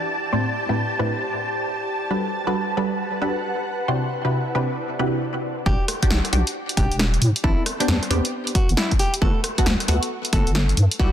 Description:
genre	UK garage, two-step garage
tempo	135 BPM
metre	4/4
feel	swing 64% on 16ths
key	unclear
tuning	A4 = 439 Hz
part	soft string machine	sustained chords	0.0-5.2 s	A5	-29 LUFS	equal	ensemble chorus, sidechain pumping
part	ethereal airy pad	texture	0.0-5.2 s	E4 to A5	-29 LUFS	equal	ensemble chorus, built-in reverb, sidechain pumping
part	punchy chord stab	stabs	0.3-11.1 s	A2 to C5	-25 LUFS	equal	chorus, phaser, digital delay
part	nylon-string guitar	melody	5.7-11.1 s	D4 to A4	-29 LUFS	equal	digital delay
part	deep soft wobble bass	bass	5.7-11.1 s	E1 to A2	-20 LUFS	equal	chorus
part	electronic kick drum	drums	5.7-11.1 s	none	-20 LUFS	equal	none
part	punchy analog drum machine	drums	5.9-11.0 s	hi-hat, rim click, snare drum	-24 LUFS	equal	overdrive
room	light reverb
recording	dense, heavily limited modern master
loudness	-20 LUFS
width	side -10 dB against mid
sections	0.0-5.7 A section; 5.7-11.1 B section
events	filter sweep on synth stab 0.0-5.7; stop 5.2-5.7; drop 5.7-11.1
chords	0.1 Am11; 1.9 Gmaj9; 3.9 Cmaj9#11; 5.7 Em9; 7.2 Am11; 9.0 Gmaj9

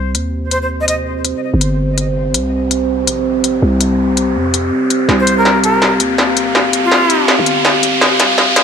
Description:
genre	half-time drum and bass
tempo	164 BPM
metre	4/4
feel	swing 60% on 16ths, half-time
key	C minor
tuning	A4 = 438 Hz
part	dark analog pad	sustained chords	0.0-8.6 s	C4 to F5	-17 LUFS	equal	wide subtle chorus
part	growling 808-style bass	bass	0.0-8.6 s	G1 to F2	-19 LUFS	equal	none
part	riser	sound effects	0.4-8.6 s	none	-20 LUFS	right 1 dB	none
part	industrial drum kit	drums	0.1-8.6 s	hi-hat, snare drum	-14 LUFS	left 1 dB	high-pass filter on snare, small room ambience, high-pass filter on hats
part	breathy bright jazz flute	melody	0.5-1.0, 5.2-7.3 s	F4 to Eb5	-18 LUFS	equal	ping-pong delay
room	moderate digital room reverb, RT60 1.2 s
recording	high-pass filter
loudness	-11 LUFS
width	side -7 dB against mid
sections	0.0-8.6 A section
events	build-up 0.0-8.6; filter sweep 0.0-8.6; riser 0.4-8.6; drum fill 5.1-8.6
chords	0.0 Cm

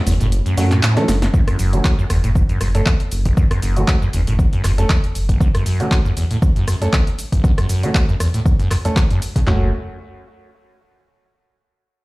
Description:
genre	acid house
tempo	118 BPM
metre	4/4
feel	swing 55% on 16ths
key	F# minor pentatonic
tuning	A4 = 440 Hz
part	warbly tape-like pad	sustained chords	0.0-1.3 s	F#3 to E4	-30 LUFS	right 2 dB	chorus, built-in reverb, phaser, sidechain pumping
part	acid bass, saw	riff	0.1-9.7 s	F#1 to F#3	-20 LUFS	equal	overdrive, lush chorus, tape echo
part	round analog bass	bass	0.1-5.4, 9.5-9.7 s	F#1 to F#2	-18 LUFS	equal	sidechain pumping
part	punchy analog drum machine	drums	0.1-9.5 s	handclaps, hi-hat, rim click, shaker, snare drum	-24 LUFS	equal	overdrive
part	warm grand piano	stabs	0.6-9.7 s	A3 to A4	-25 LUFS	right 1 dB	low-pass filter, tape echo
part	punchy analog drum machine	drums	1.3-9.6 s	handclaps, kick drum, snare drum, toms	-16 LUFS	equal	overdrive
room	light reverb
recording	played on a big sound system in a bare room, large studio reverb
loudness	-14 LUFS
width	side -21 dB against mid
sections	0.0-1.3 A section; 1.3-9.5 B section; 9.5-11.5 C section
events	break 0.0-1.3; drop 0.0-1.3; drum fill 1.0-1.3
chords	0.0 F#m; 9.5 N.C.

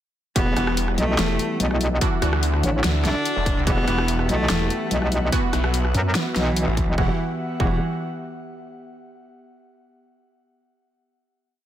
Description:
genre	heavy wobble dubstep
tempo	145 BPM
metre	4/4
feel	half-time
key	E minor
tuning	A4 = 440 Hz
part	rich cello	melody	0.4-7.8 s	E3 to D4	-27 LUFS	equal	digital delay
part	supersaw chords	sustained chords	0.4-7.2 s	D3 to F#5	-31 LUFS	equal	sidechain pumping, low-pass filter
part	orchestra-hit-like synth stab	stabs	0.4-7.8 s	E3 to F#4	-29 LUFS	right 4 dB	built-in reverb, digital delay
part	metallic wobble bass	bass	0.4-7.8 s	E1 to F#2	-22 LUFS	equal	chorus, overdrive
part	dubstep drum kit	drums	0.4-6.9 s	hi-hat, rim click, snare drum	-26 LUFS	equal	none
part	electronic kick drum	drums	0.4-7.7 s	none	-24 LUFS	equal	none
part	airy breathy pad	texture	0.9-8.6 s	G3 to F#5	-32 LUFS	right 1 dB	chorus, sidechain pumping
part	snarling distorted saw bass	bass	0.6-6.9 s	E1 to D2	-23 LUFS	equal	distortion, overdrive
room	little or no reverb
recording	none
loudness	-19 LUFS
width	side -11 dB against mid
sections	0.4-7.0 drop; 7.0-8.6 final chord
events	drop 0.4-7.0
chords	0.4 Emadd9; 2.0 Dadd9; 3.7 Emadd9; 5.3 Bsus4; 7.0 Emadd9

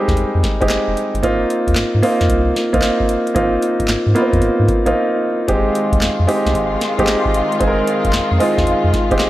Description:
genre	R&B, new jack swing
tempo	113 BPM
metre	4/4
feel	swing 67% on 16ths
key	F minor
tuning	A4 = 440 Hz
part	warm concert grand piano	accompaniment	0.0-9.3 s	G3 to Bb4	-16 LUFS	right 1 dB	none
part	round analog bass	bass	0.1-9.3 s	F1 to Ab2	-19 LUFS	equal	none
part	booming analog drum machine	drums	0.1-9.3 s	handclaps, hi-hat, kick drum, snare drum	-21 LUFS	equal	none
part	dark studio string section	sustained chords	5.5-9.3 s	Eb3 to F4	-21 LUFS	left 2 dB	none
room	light reverb, small room ambience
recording	lossy compression artefacts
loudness	-14 LUFS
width	side -15 dB against mid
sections	0.0-9.3 A section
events	break 5.0-5.5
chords	0.0 Fm7; 1.2 Ab69; 5.5 Fm7

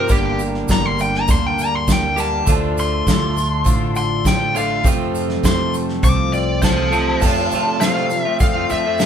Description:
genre	folk rock and heartland rock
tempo	101 BPM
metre	4/4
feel	straight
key	unclear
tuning	A4 = 440 Hz
part	biting lead guitar	melody	0.0-9.1 s	G4 to D6	-20 LUFS	left 3 dB	overdrive
part	overdriven reed electric piano	accompaniment	0.0-9.1 s	F4 to D5	-30 LUFS	right 2 dB	none
part	picked twelve-string acoustic guitar	accompaniment	0.0-9.1 s	G2 to Bb4	-28 LUFS	left 7 dB	none
part	tonewheel organ	sustained chords	0.0-9.1 s	A3 to Bb4	-34 LUFS	right 1 dB	none
part	electric guitar at the edge of break-up	riff	0.0-9.1 s	F2 to G4	-23 LUFS	right 5 dB	none
part	upright bass	bass	0.0-9.0 s	G1 to F3	-25 LUFS	right 1 dB	none
part	soft brush drum kit	drums	0.1-9.1 s	crash cymbal, hi-hat, kick drum, snare drum	-19 LUFS	equal	none
part	tube shaker	percussion	0.1-9.1 s	none	-32 LUFS	right 4 dB	none
room	moderate studio reverb, RT60 0.7 s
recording	band playing live in one room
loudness	-15 LUFS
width	side -8 dB against mid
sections	0.0-7.2 A section; 7.2-9.1 B section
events	lead electric guitar solo 0.0-7.2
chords	0.1 Gm; 2.5 Dm; 4.8 F

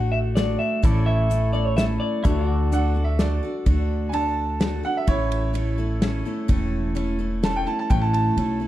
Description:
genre	honky-tonk and classic country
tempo	127 BPM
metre	3/4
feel	straight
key	D major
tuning	A4 = 440 Hz
part	electric guitar through a small old amp	melody	0.0-3.4 s	C#5 to F#5	-27 LUFS	left 1 dB	tape echo
part	picked steel-string acoustic guitar	accompaniment	0.0-8.7 s	A2 to A4	-26 LUFS	left 1 dB	none
part	pedal steel guitar	sustained chords	0.0-3.7 s	E4 to D5	-34 LUFS	equal	none
part	upright bass	bass	0.0-8.7 s	E1 to D2	-24 LUFS	equal	none
part	natural country drum kit	drums	0.4-8.5 s	hi-hat, kick drum, ride cymbal, snare drum	-22 LUFS	equal	none
part	bright upright piano	second line	2.7-8.6 s	E4 to A5	-27 LUFS	right 3 dB	none
room	light reverb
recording	dark, warm production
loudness	-20 LUFS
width	side -14 dB against mid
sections	0.0-3.7 A section; 3.7-8.7 B section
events	upright piano solo 3.7-8.7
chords	0.0 D; 0.8 A; 2.2 D; 5.1 A

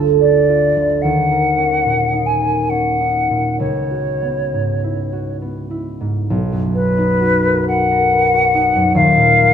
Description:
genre	classical, impressionist duo for flute and harp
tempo	68 BPM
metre	3/4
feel	uneven beats, rubato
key	B major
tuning	A4 = 439 Hz
part	concert harp	accompaniment	0.0-9.5 s	D#1 to B4	-17 LUFS	right 2 dB	none
part	mellow hollow silver concert flute	melody	0.2-9.5 s	B4 to G#5	-15 LUFS	left 2 dB	none
room	moderate recital hall reverb, RT60 1.6 s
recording	close, detailed microphones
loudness	-13 LUFS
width	side -8 dB against mid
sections	0.0-6.3 A section; 6.3-9.5 B section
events	none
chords	0.0 F69/G; 1.0 D#m7; 3.6 C#m11; 6.3 Bmaj7; 9.0 D#5

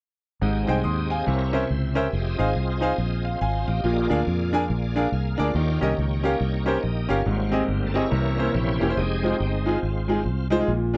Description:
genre	gospel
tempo	140 BPM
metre	4/4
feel	swing 62% on 8ths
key	Ab major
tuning	A4 = 440 Hz
part	bright grand piano	accompaniment	0.4-11.0 s	Ab2 to Eb6	-27 LUFS	equal	none
part	bright tonewheel organ	sustained chords	0.4-11.0 s	D3 to C6	-33 LUFS	equal	slow rotary speaker, chorus vibrato
part	fingered electric bass	bass	0.4-11.0 s	E1 to F2	-28 LUFS	equal	none
room	little or no reverb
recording	dry, close 1970s-style studio recording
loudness	-24 LUFS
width	mono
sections	0.4-7.3 A section; 7.3-11.0 B section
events	tonewheel organ solo 7.3-11.0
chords	0.4 Abmaj7; 1.3 C7b9; 2.1 Fm7; 3.8 Bb7; 5.5 Eb7; 7.3 Abmaj7; 8.1 C7b9; 9.0 Fm7

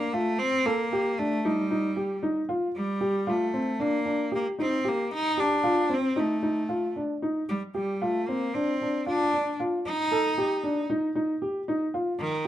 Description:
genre	contemporary instrumental, contemporary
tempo	229 BPM (eighths)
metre	9/8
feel	straight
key	unclear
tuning	A4 = 441 Hz
part	bright cello	melody	0.0-12.5 s	Eb3 to Eb4	-28 LUFS	equal	none
part	warm baby grand piano	arpeggios	0.0-12.5 s	C4 to A4	-27 LUFS	equal	none
room	moderate studio reverb, RT60 0.8 s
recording	dark, warm production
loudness	-25 LUFS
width	side -12 dB against mid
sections	0.0-12.5 A section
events	none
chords	0.4 Gm9; 2.7 Ebmaj7; 7.5 Dm; 9.9 F13

